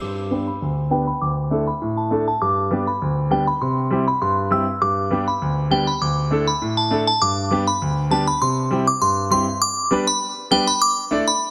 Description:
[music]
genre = dancehall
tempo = 100 BPM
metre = 4/4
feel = straight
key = G major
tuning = A4 = 440 Hz
[part]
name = glassy synth bell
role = melody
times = 0.0-11.4 s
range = G5 to E6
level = -23 LUFS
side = equal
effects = chorus, phaser, low-pass filter, digital delay
[part]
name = clear grand piano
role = accompaniment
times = 0.0-11.2 s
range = D2 to D5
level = -24 LUFS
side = equal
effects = low-pass filter
[sound]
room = light reverb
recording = dense, heavily limited modern master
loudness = -20 LUFS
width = mono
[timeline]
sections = 0.0-9.6 A section; 9.6-11.5 B section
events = filter sweep 0.0-9.6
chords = 0.0 G; 1.2 Dsus2; 2.4 G; 3.6 C; 4.8 G; 6.0 Dsus2; 7.2 G; 8.4 C; 9.6 G; 10.8 Dsus2

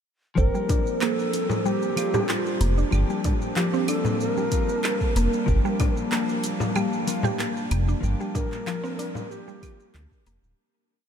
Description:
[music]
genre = organic downtempo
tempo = 94 BPM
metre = 4/4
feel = straight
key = G minor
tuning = A4 = 441 Hz
[part]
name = reedy low Native American-style wooden flute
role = melody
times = 0.4-10.3 s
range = F4 to Bb4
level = -30 LUFS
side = equal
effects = diffuse ambient delay
[part]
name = clean electric guitar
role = accompaniment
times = 0.4-9.8 s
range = F3 to G4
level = -33 LUFS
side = left 4 dB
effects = analog chorus, sidechain pumping, tape echo
[part]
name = warbly tape-like pad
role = sustained chords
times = 1.0-10.6 s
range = G3 to A5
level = -32 LUFS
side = equal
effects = chorus, built-in reverb, sidechain pumping
[part]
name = smooth synth bass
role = bass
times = 0.4-10.5 s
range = D1 to D2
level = -22 LUFS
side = equal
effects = sidechain pumping
[part]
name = deep house drum kit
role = drums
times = 0.4-10.6 s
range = claves, handclaps, hi-hat, shaker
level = -33 LUFS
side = right 1 dB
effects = none
[part]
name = electronic kick drum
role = drums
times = 0.4-10.2 s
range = none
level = -25 LUFS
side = equal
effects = none
[part]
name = quartz singing bowl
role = texture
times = 0.4-10.6 s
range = C4 to C5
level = -35 LUFS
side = right 4 dB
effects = none
[part]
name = mallet-like synth pluck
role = arpeggios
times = 0.5-10.4 s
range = F3 to G4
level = -29 LUFS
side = equal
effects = chorus, tape echo
[part]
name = frame drum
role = percussion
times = 0.7-9.3 s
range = none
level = -32 LUFS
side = left 3 dB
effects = none
[sound]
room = moderate huge ambient reverb, RT60 7.5 s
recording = dreamy mix soaked in reverb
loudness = -22 LUFS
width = side -8 dB against mid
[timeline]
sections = 0.4-10.6 groove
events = filter sweep on synth pluck 0.4-10.6; fade-out 7.2-10.6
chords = 0.4 Gm7

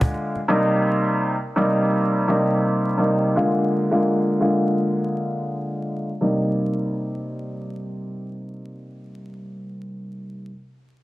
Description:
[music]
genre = hip hop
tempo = 84 BPM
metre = 4/4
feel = swing 60% on 16ths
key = C minor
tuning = A4 = 437 Hz
[part]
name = bright upright piano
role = accompaniment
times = 0.0-10.5 s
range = C3 to F4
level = -20 LUFS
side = equal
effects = cassette tape, high-pass filter, low-pass filter
[sound]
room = light reverb, studio ambience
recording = dense, heavily limited modern master, vinyl crackle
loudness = -19 LUFS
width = side -17 dB against mid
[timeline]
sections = 0.0-6.2 A section; 6.2-9.1 B section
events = filter sweep on upright piano 0.0-6.2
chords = 0.0 Bb7; 0.5 Cm7; 3.4 Bb7; 6.2 Cm7

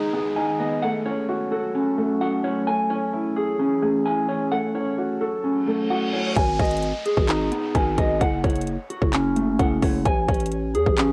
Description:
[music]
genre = hip hop, trap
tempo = 130 BPM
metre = 4/4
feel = half-time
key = unclear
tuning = A4 = 439 Hz
[part]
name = dark baby grand piano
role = accompaniment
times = 0.0-6.4 s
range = G#3 to A4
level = -29 LUFS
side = equal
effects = low-pass filter, cassette tape
[part]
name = glassy FM pad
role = sustained chords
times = 0.0-6.3 s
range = D#3 to A4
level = -35 LUFS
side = equal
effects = ensemble chorus, built-in reverb, cassette tape
[part]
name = mellow electric guitar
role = arpeggios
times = 0.0-11.1 s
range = A3 to G#5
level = -26 LUFS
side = equal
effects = spring reverb, low-pass filter, cassette tape, analog delay
[part]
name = downlifter and reverse cymbal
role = sound effects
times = 0.0-10.1 s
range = none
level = -38 LUFS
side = equal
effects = none
[part]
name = growling 808-style bass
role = bass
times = 6.4-11.1 s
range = F#1 to E2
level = -27 LUFS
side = equal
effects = none
[part]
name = trap drum kit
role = drums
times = 6.4-11.1 s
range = handclaps, hi-hat, kick drum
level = -26 LUFS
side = equal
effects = none
[sound]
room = light reverb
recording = home recording on cassette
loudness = -23 LUFS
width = mono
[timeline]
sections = 0.0-6.4 A section; 6.4-11.1 B section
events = reverse cymbal 5.7-6.4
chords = 0.0 G#m; 0.8 F#m; 2.7 Amaj7; 4.5 F#m; 6.4 G#m; 8.2 F#m; 10.1 Amaj7

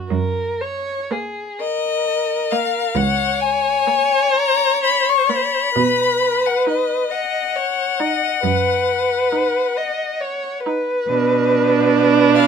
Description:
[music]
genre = classical, slow romantic movement for string quartet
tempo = 40-47 BPM (dotted quarters)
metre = 12/8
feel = rubato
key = F# major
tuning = A4 = 439 Hz
[part]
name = clear viola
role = accompaniment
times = 0.0-12.5 s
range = A#3 to D#4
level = -19 LUFS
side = right 6 dB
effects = none
[part]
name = dark violin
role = second line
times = 0.1-12.5 s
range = G#4 to D#5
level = -20 LUFS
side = left 1 dB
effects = none
[part]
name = rich cello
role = bass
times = 0.1-12.5 s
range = C#2 to B2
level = -21 LUFS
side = right 6 dB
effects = none
[part]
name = rich violin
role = melody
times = 1.6-12.5 s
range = D#5 to C#6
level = -19 LUFS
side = left 8 dB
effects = none
[sound]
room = light reverb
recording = minimal, uncompressed stereo recording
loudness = -16 LUFS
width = side -6 dB against mid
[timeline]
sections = 0.1-12.5 A section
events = none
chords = 0.1 F#; 5.7 B; 11.1 Bm

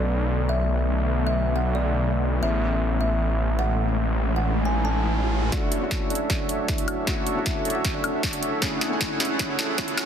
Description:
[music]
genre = future bass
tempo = 155 BPM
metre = 4/4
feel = half-time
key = unclear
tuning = A4 = 440 Hz
[part]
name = kalimba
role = melody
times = 0.0-10.0 s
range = C#4 to A5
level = -30 LUFS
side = right 1 dB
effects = sidechain pumping, low-pass filter, tape echo
[part]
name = felt-muted upright piano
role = accompaniment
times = 0.0-10.1 s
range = A3 to G#5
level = -34 LUFS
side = left 6 dB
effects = vintage 12-bit sampler grit, sidechain pumping, tape echo
[part]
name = shimmering ambient pad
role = sustained chords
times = 0.0-10.1 s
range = D2 to G#5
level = -32 LUFS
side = left 2 dB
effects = chorus, built-in reverb, sidechain pumping
[part]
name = wide detuned saw bass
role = bass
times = 0.0-5.5 s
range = A1 to B1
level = -23 LUFS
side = equal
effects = chorus, sidechain pumping
[part]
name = riser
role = sound effects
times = 3.9-10.1 s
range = none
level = -35 LUFS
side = equal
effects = none
[part]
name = soft supersaw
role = riff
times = 5.5-10.1 s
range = D4 to F#5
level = -28 LUFS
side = right 2 dB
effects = sidechain pumping, low-pass filter
[part]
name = electronic kick drum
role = drums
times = 5.5-9.9 s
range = none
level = -29 LUFS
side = equal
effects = overdrive
[part]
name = trap drum kit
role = drums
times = 5.5-10.1 s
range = hi-hat, snare drum, woodblock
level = -28 LUFS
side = equal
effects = high-pass filter on cymbals, high-pass filter on snare, high-pass filter on hats, high-pass filter on perc
[sound]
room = light reverb, digital ambience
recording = dense, heavily limited modern master, high-pass filter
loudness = -22 LUFS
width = side -8 dB against mid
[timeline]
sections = 0.0-5.5 A section; 5.5-10.1 B section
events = filter sweep on ambient pad 0.0-5.5; riser 3.9-5.5; build-up 5.5-10.1; drum fill 5.5-10.1; filter sweep on supersaw synth 5.5-10.1; filter sweep 5.5-10.1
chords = 0.0 Bm9; 2.4 Amaj9; 5.5 Dmaj9; 8.6 F#m9

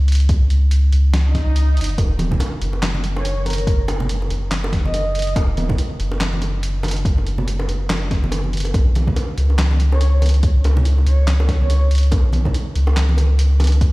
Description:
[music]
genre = deep dubstep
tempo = 142 BPM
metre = 4/4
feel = swing 57% on 16ths, half-time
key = Eb minor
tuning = A4 = 440 Hz
[part]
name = soft dub sub bass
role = bass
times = 0.0-13.9 s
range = Eb1 to C#2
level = -16 LUFS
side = equal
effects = tube saturation
[part]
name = trip hop sampler-style drum kit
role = drums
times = 0.1-13.9 s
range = handclaps, hi-hat, snare drum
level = -27 LUFS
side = equal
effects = none
[part]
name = electronic kick drum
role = drums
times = 0.3-13.9 s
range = none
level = -18 LUFS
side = equal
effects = none
[part]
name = swell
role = sound effects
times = 1.3-2.0 s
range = none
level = -31 LUFS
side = equal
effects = none
[part]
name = bongos and congas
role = percussion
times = 2.0-13.7 s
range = none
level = -26 LUFS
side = right 1 dB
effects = dub echo
[part]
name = breathy flute-like synth lead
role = melody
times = 3.2-5.4, 9.9-11.9 s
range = Bb4 to Eb5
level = -28 LUFS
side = right 1 dB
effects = lush chorus, dub echo
[sound]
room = little or no reverb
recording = played on a big sound system in a bare room, large studio reverb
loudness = -15 LUFS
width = side -21 dB against mid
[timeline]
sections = 0.0-13.9 A section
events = swell 1.3-2.0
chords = 0.0 N.C.; 2.0 Ebm; 8.7 Bsus2

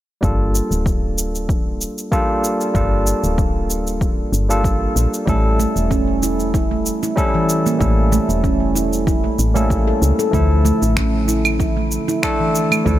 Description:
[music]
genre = organic downtempo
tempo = 95 BPM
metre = 4/4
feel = swing 54% on 16ths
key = unclear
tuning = A4 = 436 Hz
[part]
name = barky tine electric piano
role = accompaniment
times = 0.2-13.0 s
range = D3 to A4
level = -21 LUFS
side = equal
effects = sidechain pumping, ping-pong delay
[part]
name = woody FM bass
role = bass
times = 0.2-13.0 s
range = D1 to D2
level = -19 LUFS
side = equal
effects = none
[part]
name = electronic cabasa, finger snaps and claves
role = drums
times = 0.2-13.0 s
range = none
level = -24 LUFS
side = right 2 dB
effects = none
[part]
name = electronic kick drum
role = drums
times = 0.2-13.0 s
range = none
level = -21 LUFS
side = equal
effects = none
[part]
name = handpan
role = arpeggios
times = 5.3-13.0 s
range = E3 to A4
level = -20 LUFS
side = right 2 dB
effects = ping-pong delay
[sound]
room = light reverb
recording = none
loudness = -15 LUFS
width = side -13 dB against mid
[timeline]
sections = 0.2-13.0 A section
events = none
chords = 0.2 Gm9; 5.3 A7b9; 10.3 Dmadd9

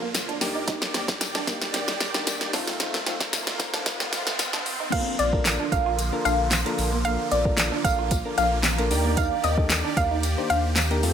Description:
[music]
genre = dance-pop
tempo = 113 BPM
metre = 4/4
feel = straight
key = Bb major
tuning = A4 = 440 Hz
[part]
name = supersaw chords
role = sustained chords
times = 0.0-11.1 s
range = D3 to D5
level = -31 LUFS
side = right 1 dB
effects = phaser, sidechain pumping
[part]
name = electric guitar at the edge of break-up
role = riff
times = 0.0-11.1 s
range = A3 to F4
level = -34 LUFS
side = right 7 dB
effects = lush chorus
[part]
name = warm sub bass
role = bass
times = 0.0-11.1 s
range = Bb1 to F2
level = -28 LUFS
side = equal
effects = sidechain pumping
[part]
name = riser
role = sound effects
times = 0.3-4.9 s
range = none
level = -36 LUFS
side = left 1 dB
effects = none
[part]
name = smooth R&B drum kit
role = drums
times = 0.1-11.1 s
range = crash cymbal, handclaps, hi-hat, kick drum, snare drum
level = -26 LUFS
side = equal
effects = none
[part]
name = tambourine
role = percussion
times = 0.1-11.1 s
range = none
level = -35 LUFS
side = left 9 dB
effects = none
[part]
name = soft electric-piano-like synth keys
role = accompaniment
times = 0.4-11.1 s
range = A3 to C5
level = -32 LUFS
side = left 1 dB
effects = chorus, tremolo, sidechain pumping
[part]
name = soft round pluck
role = melody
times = 4.9-10.6 s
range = D5 to F5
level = -26 LUFS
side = equal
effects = chorus, sidechain pumping, tape echo
[sound]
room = light reverb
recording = high-pass filter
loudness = -22 LUFS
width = side -8 dB against mid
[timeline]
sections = 0.0-4.9 A section; 4.9-11.1 B section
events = build-up 0.0-4.9; drum fill 0.0-4.9; riser 0.3-4.9; drop 4.9-11.1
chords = 0.4 Ebmaj7; 2.5 F7; 4.9 Bbmaj7; 8.9 Ebmaj7

